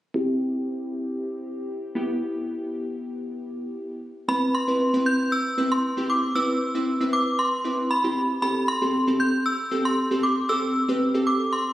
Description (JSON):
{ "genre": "pop", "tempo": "116 BPM", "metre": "4/4", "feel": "straight", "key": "C major", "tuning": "A4 = 439 Hz", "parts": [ { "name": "glassy digital keys", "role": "accompaniment", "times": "0.1-11.5 s", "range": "B3 to B4", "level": "-24 LUFS", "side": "equal", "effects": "chorus, low-pass filter" }, { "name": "synth chime", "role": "melody", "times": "4.3-11.7 s", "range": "B5 to G6", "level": "-24 LUFS", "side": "equal", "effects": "ensemble chorus, dub echo" } ], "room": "moderate lush hall reverb, RT60 2.9 s", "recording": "recorded on a phone in the room, club reverb, compression", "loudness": "-22 LUFS", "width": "side -14 dB against mid", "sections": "0.1-4.3 A section; 4.3-11.7 B section", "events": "none", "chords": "0.1 C; 2.0 Em/B; 4.0 N.C.; 4.3 Cmaj7; 8.4 Am7" }